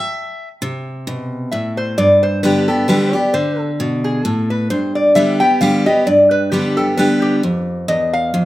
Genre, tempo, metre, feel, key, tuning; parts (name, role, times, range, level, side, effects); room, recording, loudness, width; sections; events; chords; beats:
bluegrass; 132 BPM; 3/4; swing 55% on 8ths; A4 = 441 Hz
picked steel-string acoustic guitar; accompaniment; 0.0-8.4 s; E2 to E5; -16 LUFS; equal
lap resonator guitar; melody; 1.5-8.4 s; G4 to G5; -16 LUFS; equal
light reverb; close, detailed microphones; -13 LUFS; side -16 dB against mid
0.6-8.4 A section
resonator guitar played with a steel bar solo 0.6-8.4
0.0 N.C.; 0.6 Amadd9; 2.0 G; 3.3 D5; 4.7 N.C.; 5.2 G; 7.4 Dmadd9 (rootless)
0.17 | 0.62 1.07 1.53 | 1.98 2.43 2.89 | 3.34 3.79 4.25 | 4.70 5.16 5.61 | 6.07 6.52 6.97 | 7.43 7.88 8.34